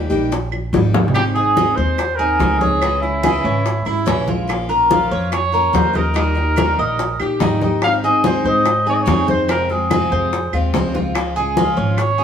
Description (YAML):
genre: latin, Cuban son and guajira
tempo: 144 BPM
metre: 4/4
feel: straight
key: Ab major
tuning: A4 = 442 Hz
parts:
  - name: picked steel-string acoustic guitar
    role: accompaniment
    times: 0.0-12.2 s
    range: C3 to Ab4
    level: -23 LUFS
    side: left 2 dB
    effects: none
  - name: upright bass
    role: bass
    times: 0.0-12.2 s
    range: Ab1 to Ab2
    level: -22 LUFS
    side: right 1 dB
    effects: none
  - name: congas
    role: percussion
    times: 0.1-12.2 s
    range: none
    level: -24 LUFS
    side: equal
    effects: none
  - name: bongos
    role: percussion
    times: 0.3-12.2 s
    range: none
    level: -23 LUFS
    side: left 4 dB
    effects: none
  - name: claves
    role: percussion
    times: 0.5-12.2 s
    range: none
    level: -32 LUFS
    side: right 8 dB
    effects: none
  - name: warm trumpet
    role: melody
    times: 1.1-12.2 s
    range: Fb4 to F5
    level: -20 LUFS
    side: right 1 dB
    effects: none
  - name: Cuban tres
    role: arpeggios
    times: 1.4-12.2 s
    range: C4 to Eb5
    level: -20 LUFS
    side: equal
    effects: none
room: moderate stone room reverb, RT60 1.0 s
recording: band playing live in one room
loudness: -15 LUFS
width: side -8 dB against mid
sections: 0.0-1.2 A section; 1.2-12.2 B section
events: drum fill 0.7-1.2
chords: 0.0 Eb; 1.2 Ab; 2.8 Dbm; 4.5 Bbm; 6.2 Eb; 7.8 Ab; 9.5 Fm; 11.2 Db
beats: 0.32 0.74 | 1.15 1.57 1.99 2.40 | 2.82 3.24 3.65 4.07 | 4.49 4.91 5.32 5.74 | 6.16 6.58 6.99 7.41 | 7.83 8.24 8.66 9.07 | 9.49 9.91 10.32 10.74 | 11.15 11.57 11.98